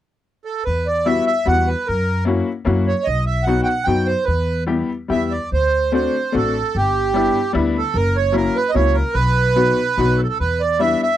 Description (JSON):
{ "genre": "musette", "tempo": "148 BPM", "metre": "3/4", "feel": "rubato", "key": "E minor", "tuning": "A4 = 440 Hz", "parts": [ { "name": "accordion", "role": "melody", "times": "0.5-11.2 s", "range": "G4 to G5", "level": "-19 LUFS", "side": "right 3 dB", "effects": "none" }, { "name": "upright bass", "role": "bass", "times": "0.7-10.9 s", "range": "F#1 to F#2", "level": "-21 LUFS", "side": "equal", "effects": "none" }, { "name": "bright upright piano", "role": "accompaniment", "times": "1.1-11.0 s", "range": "F#3 to G4", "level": "-20 LUFS", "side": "left 4 dB", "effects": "none" } ], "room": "light reverb", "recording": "dry, close 1970s-style studio recording", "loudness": "-16 LUFS", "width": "side -12 dB against mid", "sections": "0.7-11.2 A section", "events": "none", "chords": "0.0 N.C.; 0.7 Emadd9; 1.9 F#7; 3.1 B; 4.3 Em; 5.5 D7; 6.7 G6; 8.0 F#7; 9.2 B; 10.4 Em7" }